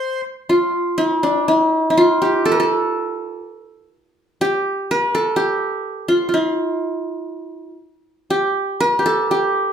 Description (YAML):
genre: arabic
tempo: 123 BPM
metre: 4/4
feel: straight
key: C maqam rast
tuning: A4 = 440 Hz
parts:
  - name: qanun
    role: melody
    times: 0.0-9.7 s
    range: D4 to Bb4+50c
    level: -16 LUFS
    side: equal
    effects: none
room: wet large studio reverb, RT60 0.8 s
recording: band playing live in one room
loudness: -16 LUFS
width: side -8 dB against mid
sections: 0.5-9.7 A section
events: none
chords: none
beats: | 0.48 0.97 1.46 1.95 | 2.44 2.93 3.42 3.91 | 4.40 4.89 5.38 5.87 | 6.36 6.85 7.34 7.83 | 8.32 8.80 9.29